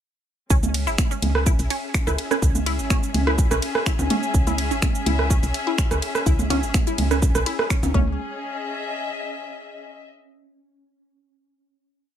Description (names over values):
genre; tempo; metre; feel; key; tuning
minimal techno; 125 BPM; 4/4; straight; C# minor; A4 = 440 Hz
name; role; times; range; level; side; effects
resonant blip pluck; riff; 0.5-8.2 s; C#4 to E4; -29 LUFS; equal; phaser, sidechain pumping, tape echo
woody FM bass; bass; 0.5-8.2 s; G#1 to C#2; -24 LUFS; equal; sidechain pumping
electronic kick drum; drums; 0.5-8.0 s; none; -20 LUFS; equal; none
house drum kit; drums; 0.5-7.9 s; finger snaps, hi-hat, ride cymbal, shaker; -29 LUFS; right 2 dB; none
rich symphonic string section; texture; 0.5-10.1 s; C#4 to E5; -30 LUFS; left 4 dB; sidechain pumping
swarming drone; texture; 1.3-8.2 s; C#4; -36 LUFS; equal; built-in reverb, sidechain pumping
minimal click drum kit; percussion; 0.6-8.0 s; percussion blips, rim click, toms; -25 LUFS; right 2 dB; ping-pong delay
room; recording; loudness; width
light reverb; none; -19 LUFS; side -10 dB against mid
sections
0.5-8.2 drop; 8.2-10.1 final chord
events
drop 0.5-8.2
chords
0.5 C#m; 7.9 C#5; 8.2 C#m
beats
| 0.50 0.98 1.46 1.94 | 2.42 2.90 3.38 3.86 | 4.34 4.82 5.30 5.78 | 6.26 6.74 7.22 7.70 | 8.18 8.66 9.14 9.62